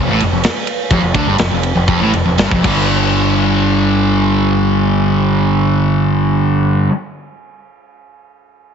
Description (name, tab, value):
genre	hard rock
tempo	113-131 BPM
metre	4/4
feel	straight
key	unclear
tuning	A4 = 439 Hz
part	sludgy distorted guitar	riff	0.0-6.9 s	F2 to G3	-13 LUFS	equal	overdrive
part	growling fingered electric bass	bass	0.0-6.9 s	F1 to D2	-18 LUFS	equal	overdrive
part	tight metal drum kit	drums	0.2-2.8 s	crash cymbal, kick drum, ride cymbal, snare drum	-19 LUFS	equal	none
room	light reverb, studio ambience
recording	heavily compressed radio sound, nothing above 7.8 kHz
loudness	-12 LUFS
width	side -7 dB against mid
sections	0.0-2.9 A section; 2.9-7.1 B section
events	slowing down 0.0-2.9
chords	0.0 Fadd9; 2.6 G5